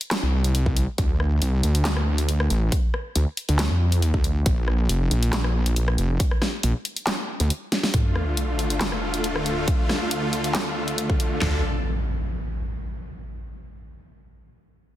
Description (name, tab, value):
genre	heavy wobble dubstep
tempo	138 BPM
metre	4/4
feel	half-time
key	D minor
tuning	A4 = 440 Hz
part	dubstep drum kit	drums	0.0-11.3 s	handclaps, hi-hat, rim click, snare drum	-27 LUFS	equal	studio reverb
part	wobble bass	bass	0.2-7.5, 11.4-11.6 s	F1 to F2	-21 LUFS	equal	chorus, overdrive
part	dubstep drum kit	drums	0.7-11.5 s	handclaps, kick drum, snare drum, toms	-23 LUFS	equal	overdrive, studio reverb
part	supersaw chords	sustained chords	7.9-11.6 s	D2 to A4	-26 LUFS	equal	sidechain pumping
part	sub drop and impact	sound effects	7.9-13.2 s	none	-28 LUFS	equal	none
room	little or no reverb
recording	dense, heavily limited modern master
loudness	-21 LUFS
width	side -13 dB against mid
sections	0.0-7.9 A section; 7.9-11.4 B section; 11.4-13.2 C section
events	drop 0.0-7.9; drum fill 7.7; impact 7.9-9.7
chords	0.0 N.C.; 7.9 Dm